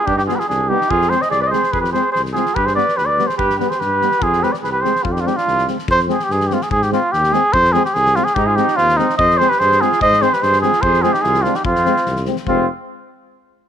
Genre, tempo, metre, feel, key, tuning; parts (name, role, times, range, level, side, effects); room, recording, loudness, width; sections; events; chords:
balkan folk, Balkan brass band; 145 BPM; 2/4; straight; F dorian sharp4; A4 = 439 Hz
cornet with cup mute; melody; 0.0-12.7 s; Eb4 to Eb5; -15 LUFS; equal
warm flugelhorn; second line; 0.0-5.7, 8.4-12.7 s; C4 to C5; -24 LUFS; right 11 dB
mellow tuba; bass; 0.1-12.7 s; F1 to Ab2; -22 LUFS; left 1 dB
loose indie drum kit; percussion; 0.1-12.7 s; kick drum, snare drum; -28 LUFS; left 3 dB
dark euphonium; accompaniment; 0.3-12.7 s; G3 to Ab3; -27 LUFS; right 14 dB
warm trombone; accompaniment; 0.3-12.7 s; B3 to C4; -25 LUFS; left 15 dB
light reverb, small room ambience; 1960s-style stereo with parts hard left and right; -14 LUFS; side -9 dB against mid
0.0-5.9 A section; 5.9-12.5 B section
0.0 G; 0.9 Fm; 2.6 G; 4.2 Fm; 6.7 Ab; 7.5 Fm; 8.4 Ab; 9.2 Fm; 10.0 Ab; 10.8 Fm